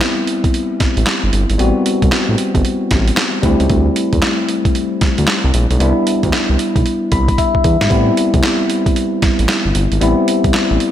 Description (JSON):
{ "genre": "R&B, new jack swing", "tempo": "114 BPM", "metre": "4/4", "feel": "swing 63% on 16ths", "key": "A dorian", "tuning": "A4 = 440 Hz", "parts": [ { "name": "bell-like tine electric piano", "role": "accompaniment", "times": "0.0-10.9 s", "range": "G3 to B5", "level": "-16 LUFS", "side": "left 2 dB", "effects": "wide subtle chorus, slapback echo" }, { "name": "boom bap sampler-style drum kit", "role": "drums", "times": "0.0-10.9 s", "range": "handclaps, hi-hat, kick drum, snare drum", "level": "-17 LUFS", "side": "right 1 dB", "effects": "none" }, { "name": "smooth synth bass", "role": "bass", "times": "0.8-10.8 s", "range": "G1 to E2", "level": "-16 LUFS", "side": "right 1 dB", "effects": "none" } ], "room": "light reverb", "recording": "none", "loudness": "-12 LUFS", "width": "side -11 dB against mid", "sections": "0.0-10.9 A section", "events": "tine electric piano fill 6.9-7.9; drum fill 7.4-7.9", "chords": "0.0 Am7; 3.4 D7sus4; 5.8 Cmaj7; 7.9 Am7", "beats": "0.01 0.54 1.07 | 1.59 2.12 2.65 3.17 | 3.70 4.22 4.75 5.28 | 5.80 6.33 6.86 7.38 | 7.91 8.44 8.96 9.49 | 10.01 10.54" }